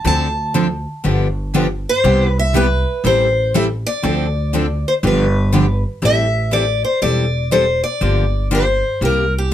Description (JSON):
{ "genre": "acoustic string swing (jazz manouche)", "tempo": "120 BPM", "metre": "4/4", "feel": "swing 64% on 8ths", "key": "A minor from 6.0 s", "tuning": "A4 = 440 Hz", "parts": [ { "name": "picked steel-string acoustic guitar", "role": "melody", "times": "0.0-9.5 s", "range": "G4 to A5", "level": "-18 LUFS", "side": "left 1 dB", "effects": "none" }, { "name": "picked steel-string acoustic guitar", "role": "accompaniment", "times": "0.0-9.5 s", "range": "C3 to A4", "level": "-19 LUFS", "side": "left 3 dB", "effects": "none" }, { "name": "picked steel-string acoustic guitar", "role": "accompaniment", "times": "0.0-5.7 s", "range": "C3 to A4", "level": "-22 LUFS", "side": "right 8 dB", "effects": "none" }, { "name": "upright bass", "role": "bass", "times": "0.0-9.5 s", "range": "E1 to D2", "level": "-19 LUFS", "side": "equal", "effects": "none" } ], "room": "light reverb", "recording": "none", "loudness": "-14 LUFS", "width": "side -11 dB against mid", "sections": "0.0-6.0 A section; 6.0-9.5 B section", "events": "none", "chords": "0.1 Dm7; 1.0 G7; 2.0 Cmaj7; 3.0 Am7; 4.0 Dm7; 5.0 G7; 6.0 Am7; 8.0 Gm7; 9.0 C7", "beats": "| 0.05 0.55 1.05 1.55 | 2.04 2.54 3.04 3.54 | 4.04 4.54 5.03 5.53 | 6.03 6.53 7.03 7.52 | 8.02 8.52 9.02 9.52" }